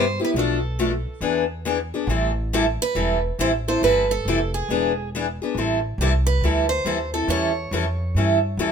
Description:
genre	acoustic string swing (jazz manouche)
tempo	138 BPM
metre	4/4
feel	swing 64% on 8ths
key	A minor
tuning	A4 = 439 Hz
part	picked steel-string acoustic guitar	melody	0.0-8.6 s	G4 to C#5	-25 LUFS	right 4 dB	none
part	picked steel-string acoustic guitar	accompaniment	0.0-8.7 s	B2 to A4	-22 LUFS	left 2 dB	none
part	upright bass	bass	0.0-8.7 s	E1 to G2	-25 LUFS	equal	none
room	light reverb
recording	minimal, uncompressed stereo recording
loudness	-20 LUFS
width	side -7 dB against mid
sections	0.0-5.5 A section; 5.5-8.7 A section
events	none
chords	0.4 Bm7b5; 1.2 E7; 2.1 Am7; 4.7 E7; 5.5 Am7; 7.3 A7

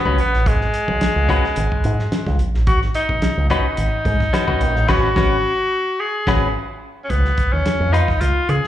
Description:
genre	funk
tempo	108 BPM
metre	4/4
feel	straight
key	G# dorian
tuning	A4 = 445 Hz
part	clear tenor saxophone	melody	0.0-8.7 s	G#3 to G#4	-21 LUFS	left 1 dB	slapback echo
part	clean electric guitar	accompaniment	0.0-8.1 s	C#4 to B4	-22 LUFS	left 4 dB	spring reverb, slapback echo
part	fingered electric bass with an envelope filter	bass	0.1-8.6 s	G#1 to C#3	-19 LUFS	equal	none
part	warm soul drum kit	drums	0.1-8.7 s	crash cymbal, hi-hat, kick drum, snare drum	-22 LUFS	equal	none
room	light reverb, small room ambience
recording	live gig heard through the venue's PA, club reverb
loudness	-16 LUFS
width	side -12 dB against mid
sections	0.0-7.1 A section; 7.1-8.7 B section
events	band accent 4.9-7.1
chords	0.0 G#m11; 7.1 C#9

